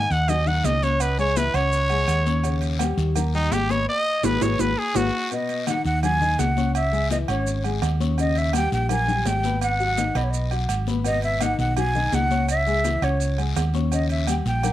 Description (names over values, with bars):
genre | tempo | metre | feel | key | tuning
latin, salsa | 167 BPM | 4/4 | straight | G# minor | A4 = 439 Hz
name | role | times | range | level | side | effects
growling trumpet | melody | 0.0-5.3 s | D#4 to G#5 | -24 LUFS | right 1 dB | cassette tape, analog delay
dark concert grand piano | accompaniment | 0.0-14.7 s | B2 to C#6 | -30 LUFS | left 7 dB | none
hollow-body short-scale fingered electric bass | bass | 0.0-14.7 s | G#1 to D#2 | -24 LUFS | right 1 dB | none
congas | percussion | 0.1-14.7 s | none | -29 LUFS | left 8 dB | none
guiro | percussion | 0.1-14.7 s | none | -38 LUFS | left 8 dB | none
maracas | percussion | 0.1-14.7 s | none | -36 LUFS | right 12 dB | none
agogo bells and timbales | percussion | 0.3-14.7 s | none | -32 LUFS | right 11 dB | none
breathy concert flute | melody | 5.3-14.7 s | C#5 to G#5 | -24 LUFS | right 1 dB | cassette tape
room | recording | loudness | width
light reverb | home recording on cassette | -20 LUFS | side -13 dB against mid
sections
0.0-5.3 A section; 5.3-14.7 B section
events
trumpet solo 0.0-5.3; band accent 3.9-5.3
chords
0.0 G#7(no3) (rootless); 1.0 C#m; 2.4 D#7; 3.9 G#m7; 6.7 C#m; 8.2 D#7; 9.6 G#m7; 12.5 C#m; 13.9 D#7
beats
0.29 0.65 | 1.00 1.36 1.72 2.08 | 2.44 2.80 3.16 3.52 | 3.88 4.24 4.59 4.95 | 5.31 5.67 6.03 6.39 | 6.75 7.11 7.47 7.83 | 8.18 8.54 8.90 9.26 | 9.62 9.98 10.34 10.70 | 11.05 11.41 11.77 12.13 | 12.49 12.85 13.20 13.56 | 13.92 14.28 14.64